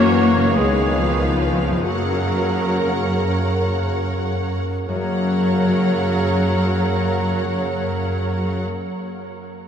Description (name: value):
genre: classical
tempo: 36-50 BPM (dotted quarters)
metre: 6/8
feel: rubato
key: F# major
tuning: A4 = 438 Hz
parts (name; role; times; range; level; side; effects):
- clear symphonic violin section; melody; 0.0-8.6 s; E5 to F#5; -31 LUFS; left 1 dB; none
- bright concert flute; second line; 0.0-8.6 s; A#4 to C#5; -30 LUFS; left 3 dB; none
- mellow cor anglais; second line; 0.0-8.6 s; F#4 to A#4; -28 LUFS; right 3 dB; none
- warm symphonic violin section; second line; 0.0-8.6 s; A#4 to C#5; -29 LUFS; right 1 dB; none
- mellow bassoon; accompaniment; 0.0-8.6 s; C#3 to F#3; -29 LUFS; right 4 dB; none
- rich symphonic viola section; accompaniment; 0.0-8.6 s; E#3 to A#3; -26 LUFS; left 3 dB; none
- mellow French horn section; sustained chords; 0.0-8.6 s; C#3 to C#4; -30 LUFS; equal; none
- concert harp; arpeggios; 0.0-9.0 s; F#2 to C#5; -26 LUFS; left 4 dB; none
- rich symphonic cello section; bass; 0.0-8.6 s; E#3 to A#3; -26 LUFS; equal; none
- warm symphonic double bass section; bass; 0.0-8.6 s; C#2 to F#2; -24 LUFS; equal; none
room: wet huge ambient reverb, RT60 7.8 s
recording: in a vast, echoing space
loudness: -17 LUFS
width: side -8 dB against mid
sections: 0.0-4.9 A section; 4.9-7.9 B section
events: slowing down 0.0-4.9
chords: 0.0 F#7; 0.5 C#9; 1.9 F#